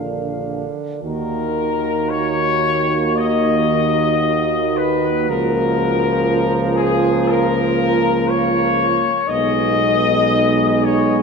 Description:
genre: classical, hymn-like piece for brass band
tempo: 48-61 BPM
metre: 4/4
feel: rubato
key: Eb minor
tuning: A4 = 439 Hz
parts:
  - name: warm trumpet section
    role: melody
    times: 0.0-11.2 s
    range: Ab4 to F5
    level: -19 LUFS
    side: left 5 dB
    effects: none
  - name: dark French horn section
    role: second line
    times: 0.0-11.2 s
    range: Eb4 to Bb4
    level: -23 LUFS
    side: right 8 dB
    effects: none
  - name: bright trombone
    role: accompaniment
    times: 0.0-11.2 s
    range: D3 to Ab3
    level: -24 LUFS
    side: right 6 dB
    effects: none
  - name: warm trombone section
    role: accompaniment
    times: 0.0-11.2 s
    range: Bb3 to D4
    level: -25 LUFS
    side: left 2 dB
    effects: none
  - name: mellow tuba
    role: bass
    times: 0.0-11.2 s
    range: Bb1 to Eb2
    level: -23 LUFS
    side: equal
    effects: none
room: wet cathedral reverb, RT60 4.1 s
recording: none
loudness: -15 LUFS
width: side -5 dB against mid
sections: 0.0-1.0 A section; 1.0-11.2 B section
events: none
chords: 0.0 Bb; 1.0 Ebm; 5.3 Bbm/Db; 9.3 Abm/Cb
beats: | 1.02 2.10 3.15 4.22 | 5.29 6.28 7.28 8.27 | 9.29 10.30

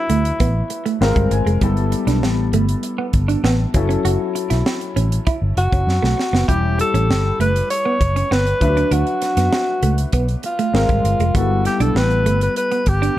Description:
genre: polished 1980s jazz-funk pop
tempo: 99 BPM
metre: 4/4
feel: straight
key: unclear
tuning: A4 = 440 Hz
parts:
  - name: breathy alto saxophone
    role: melody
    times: 0.0-1.0, 5.6-13.2 s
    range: E4 to C#5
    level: -20 LUFS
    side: equal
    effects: none
  - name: warm grand piano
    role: accompaniment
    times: 0.0-13.2 s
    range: F3 to G#5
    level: -24 LUFS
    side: left 4 dB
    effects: lush chorus
  - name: semi-hollow electric guitar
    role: riff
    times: 0.1-13.1 s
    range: G3 to F#4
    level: -24 LUFS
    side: right 6 dB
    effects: analog chorus
  - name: vintage muted fingered electric bass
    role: bass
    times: 0.1-13.1 s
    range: E1 to F#2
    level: -18 LUFS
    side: equal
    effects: none
  - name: tight funk drum kit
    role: drums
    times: 0.1-13.2 s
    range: hi-hat, kick drum, snare drum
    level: -22 LUFS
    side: equal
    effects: none
room: small room ambience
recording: dark, warm production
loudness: -15 LUFS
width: side -14 dB against mid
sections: 0.0-13.2 A section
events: grand piano fill 0.7-1.6; drum fill 5.9-6.5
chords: 0.0 D69; 1.0 G#69; 1.6 G69; 3.7 F#m7; 6.5 Em69; 8.6 D69; 10.7 G#69; 11.4 G69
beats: 0.41 1.01 | 1.62 2.23 2.84 3.44 | 4.05 4.66 5.27 5.88 | 6.49 7.09 7.70 8.31 | 8.92 9.53 10.14 10.74 | 11.35 11.96 12.57 13.18

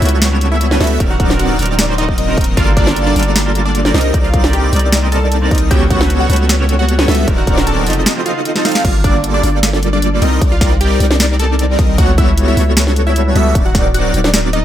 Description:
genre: future bass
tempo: 153 BPM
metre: 4/4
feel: half-time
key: unclear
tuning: A4 = 440 Hz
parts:
  - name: wide unison pluck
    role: melody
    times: 0.0-14.6 s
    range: D4 to A5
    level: -22 LUFS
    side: right 1 dB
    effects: phaser, sidechain pumping, tape echo
  - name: clean electric guitar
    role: accompaniment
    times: 0.0-8.7 s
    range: C3 to Eb5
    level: -23 LUFS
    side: right 2 dB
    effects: tremolo, sidechain pumping, tape echo
  - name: shimmering ambient pad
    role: sustained chords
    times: 0.2-8.8 s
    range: C3 to F#4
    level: -28 LUFS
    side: left 1 dB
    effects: none
  - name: airy dreamy lead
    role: arpeggios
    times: 0.0-14.6 s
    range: C#5 to F5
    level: -24 LUFS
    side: equal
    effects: chorus, sidechain pumping
  - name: big bright polysynth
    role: riff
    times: 0.0-14.6 s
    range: F#3 to F5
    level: -18 LUFS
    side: equal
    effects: phaser, sidechain pumping
  - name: long sustained 808-style bass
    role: bass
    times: 0.0-14.6 s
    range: D1 to C#2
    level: -15 LUFS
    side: equal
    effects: sidechain pumping
  - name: trap drum kit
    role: drums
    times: 0.0-14.6 s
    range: crash cymbal, hi-hat, snare drum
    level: -17 LUFS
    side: equal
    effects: none
  - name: electronic kick drum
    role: drums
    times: 1.0-13.8 s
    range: none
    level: -15 LUFS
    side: equal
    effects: none
room: digital ambience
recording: none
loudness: -11 LUFS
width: side -11 dB against mid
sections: 0.0-8.8 A section; 8.8-14.6 A section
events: drop 0.0-8.8, 8.8-14.6; drum fill 8.6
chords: 0.0 A13/C#; 1.0 D7b9b13; 2.6 Gm9; 3.9 Cm9; 5.7 A13/C#; 7.3 D7b9b13; 8.1 F7; 8.8 Gm9; 10.2 Cm9; 12.0 A13/C#; 13.6 D7b9b13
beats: 0.22 0.61 | 1.00 1.40 1.79 2.18 | 2.57 2.96 3.36 3.75 | 4.14 4.53 4.92 5.32 | 5.71 6.10 6.49 6.88 | 7.28 7.67 8.06 8.45 | 8.85 9.24 9.63 10.02 | 10.41 10.81 11.20 11.59 | 11.98 12.38 12.77 13.16 | 13.55 13.94 14.34

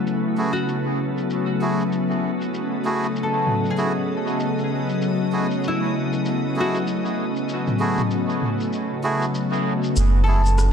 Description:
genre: ambient dub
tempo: 97 BPM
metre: 4/4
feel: swing 59% on 16ths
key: F# dorian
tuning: A4 = 440 Hz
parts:
  - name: soft additive organ-like pad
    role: sustained chords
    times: 0.0-10.7 s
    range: C#3 to D#5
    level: -22 LUFS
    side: left 2 dB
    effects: ensemble chorus, built-in reverb
  - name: organic electronic drum kit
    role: drums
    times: 0.1-10.7 s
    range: rim click, shaker, toms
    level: -31 LUFS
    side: right 1 dB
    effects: low-pass filter on perc, studio reverb, low-pass filter on toms, low-pass filter on snare, dub echo
  - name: melodica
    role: stabs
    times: 0.4-10.4 s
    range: A3 to G#4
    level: -28 LUFS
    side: right 2 dB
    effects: dub echo
  - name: concert harp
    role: arpeggios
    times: 0.5-10.7 s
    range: E4 to A4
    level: -29 LUFS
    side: left 2 dB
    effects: dub echo
  - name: soft dub sub bass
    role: bass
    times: 10.0-10.7 s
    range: F#1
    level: -16 LUFS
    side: right 1 dB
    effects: tube saturation
room: moderate echo chamber reverb, RT60 2.4 s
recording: none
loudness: -20 LUFS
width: side -7 dB against mid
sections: 0.0-10.0 A section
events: none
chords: 0.0 F#m9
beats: | 0.07 0.69 1.31 1.93 | 2.54 3.16 3.78 4.40 | 5.02 5.64 6.25 6.87 | 7.49 8.11 8.73 9.35 | 9.97 10.59

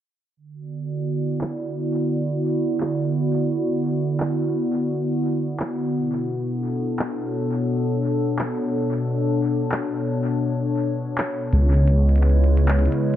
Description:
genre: IDM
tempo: 86 BPM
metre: 4/4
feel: swing 62% on 16ths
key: D lydian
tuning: A4 = 440 Hz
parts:
  - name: hollow soft pad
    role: sustained chords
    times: 0.6-13.2 s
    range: B2 to D5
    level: -22 LUFS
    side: equal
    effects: chorus
  - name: glitchy drum kit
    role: drums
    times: 1.4-13.2 s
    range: finger snaps, handclaps, hi-hat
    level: -30 LUFS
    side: equal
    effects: analog delay
  - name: dark detuned saw bass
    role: bass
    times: 11.5-12.9 s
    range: C#2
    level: -16 LUFS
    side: equal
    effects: none
room: moderate spring reverb, RT60 1.8 s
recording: echo-heavy mix, low-pass filter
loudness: -20 LUFS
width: side -11 dB against mid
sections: 0.4-13.2 A section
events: filter sweep 0.4-13.2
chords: 0.4 D6; 5.9 Bm7; 11.5 C#m7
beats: | 0.36 1.06 1.76 2.46 | 3.15 3.85 4.55 5.25 | 5.95 6.64 7.34 8.04 | 8.74 9.43 10.13 10.83 | 11.53 12.22 12.92

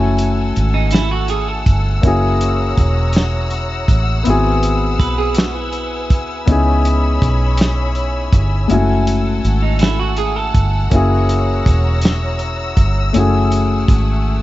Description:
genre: slow six-eight R&B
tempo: 54 BPM (dotted quarters)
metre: 6/8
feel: straight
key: F# dorian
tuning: A4 = 440 Hz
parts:
  - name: dark grand piano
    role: accompaniment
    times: 0.0-14.4 s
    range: G#3 to G#5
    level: -19 LUFS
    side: left 3 dB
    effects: plate reverb
  - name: muted studio string section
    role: sustained chords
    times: 0.0-14.4 s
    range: A3 to E6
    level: -25 LUFS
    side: left 2 dB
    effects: plate reverb
  - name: vintage muted fingered electric bass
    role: bass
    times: 0.0-14.4 s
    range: E1 to D2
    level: -16 LUFS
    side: equal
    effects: none
  - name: warm soul drum kit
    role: drums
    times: 0.2-14.1 s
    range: hi-hat, kick drum, snare drum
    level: -15 LUFS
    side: equal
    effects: none
  - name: semi-hollow electric guitar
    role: second line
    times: 0.7-10.9 s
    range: D#4 to B4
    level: -22 LUFS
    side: right 8 dB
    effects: spring reverb
room: light reverb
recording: nothing above 7.8 kHz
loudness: -13 LUFS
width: side -16 dB against mid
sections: 0.0-14.4 A section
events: none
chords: 0.0 F#m9; 2.0 F#7; 4.3 G#7alt; 6.5 C#m7; 8.7 F#m9; 10.9 F#7; 13.1 F#m9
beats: 0.92 | 2.03 3.14 | 4.25 5.36 | 6.47 7.58 | 8.70 9.81 | 10.92 12.03 | 13.14 14.25

